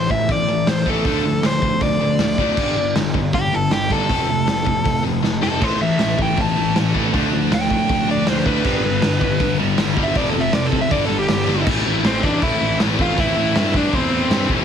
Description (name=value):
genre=punk rock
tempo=158 BPM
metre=4/4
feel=straight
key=A minor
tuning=A4 = 440 Hz
part: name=overdriven electric guitar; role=melody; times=0.0-14.5 s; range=C4 to A5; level=-22 LUFS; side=equal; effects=ping-pong delay
part: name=distorted electric guitar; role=riff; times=0.0-14.6 s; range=F2 to E4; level=-23 LUFS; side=left 10 dB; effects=overdrive
part: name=sludgy distorted guitar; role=riff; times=0.0-11.7 s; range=F2 to D4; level=-25 LUFS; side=right 7 dB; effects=overdrive
part: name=fuzz picked electric bass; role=bass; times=0.0-14.6 s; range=E1 to A2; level=-24 LUFS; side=right 1 dB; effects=overdrive
part: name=raw garage drum kit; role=drums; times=0.1-14.6 s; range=crash cymbal, hi-hat, kick drum, snare drum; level=-22 LUFS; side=right 1 dB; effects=none
part: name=heavy high-gain guitar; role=riff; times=5.6-14.6 s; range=F2 to D4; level=-25 LUFS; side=equal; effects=distortion
room=light reverb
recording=heavily compressed radio sound, multiband compression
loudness=-16 LUFS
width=side -8 dB against mid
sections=0.0-11.7 A section; 11.7-14.6 B section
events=overdriven electric guitar solo 0.0-11.7; drum fill 5.2-5.6, 11.5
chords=0.0 A5; 1.1 Dm; 2.6 G5; 4.1 F; 5.6 A5; 7.1 Dm; 8.6 G; 10.2 F5; 10.9 G5; 11.7 Am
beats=0.29 0.67 | 1.05 1.43 1.81 2.20 | 2.58 2.96 3.34 3.72 | 4.10 4.48 4.86 5.24 | 5.62 6.00 6.38 6.75 | 7.13 7.51 7.89 8.27 | 8.65 9.02 9.40 9.78 | 10.16 10.54 10.91 11.29 | 11.67 12.04 12.42 12.80 | 13.17 13.55 13.93 14.30